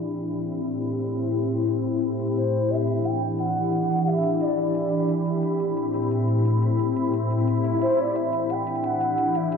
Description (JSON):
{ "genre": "liquid drum and bass", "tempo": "176 BPM", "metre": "4/4", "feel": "straight", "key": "unclear", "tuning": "A4 = 442 Hz", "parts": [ { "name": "glassy FM pad", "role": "sustained chords", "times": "0.0-9.6 s", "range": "A2 to B5", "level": "-23 LUFS", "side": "left 1 dB", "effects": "ensemble chorus, built-in reverb" }, { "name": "electronic hi-hat", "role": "drums", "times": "0.1-9.6 s", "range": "none", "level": "-59 LUFS", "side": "left 2 dB", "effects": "none" }, { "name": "hollow clarinet-like synth lead", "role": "melody", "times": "2.4-5.3, 7.8-9.6 s", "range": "C5 to G5", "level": "-26 LUFS", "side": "equal", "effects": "lush chorus, ping-pong delay" }, { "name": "swell", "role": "sound effects", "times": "7.6-8.2 s", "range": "none", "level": "-29 LUFS", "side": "equal", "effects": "none" } ], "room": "wet lush hall reverb, RT60 1.7 s, digital ambience", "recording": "dreamy mix soaked in reverb, low-pass filter", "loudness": "-22 LUFS", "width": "side -6 dB against mid", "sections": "0.0-9.6 A section", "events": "filter sweep 0.0-9.6; swell 7.6-8.2", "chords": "0.0 Am9; 2.7 Em9; 5.3 Am9; 8.2 Em9", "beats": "0.32 0.66 1.00 | 1.34 1.68 2.02 2.36 | 2.70 3.04 3.38 3.73 | 4.07 4.41 4.75 5.09 | 5.43 5.77 6.11 6.45 | 6.79 7.13 7.48 7.82 | 8.16 8.50 8.84 9.18 | 9.52" }